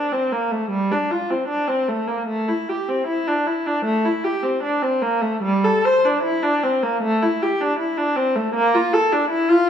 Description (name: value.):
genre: classical, baroque-style suite movement for unaccompanied viola.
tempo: 77 BPM.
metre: 4/4.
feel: rubato.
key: unclear.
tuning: A4 = 440 Hz.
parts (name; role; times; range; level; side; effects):
rich viola; solo; 0.0-9.7 s; G3 to C5; -18 LUFS; equal; none.
room: moderate recital hall reverb, RT60 1.4 s.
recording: minimal, uncompressed stereo recording.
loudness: -18 LUFS.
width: side -8 dB against mid.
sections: 0.0-9.7 A section.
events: none.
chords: none.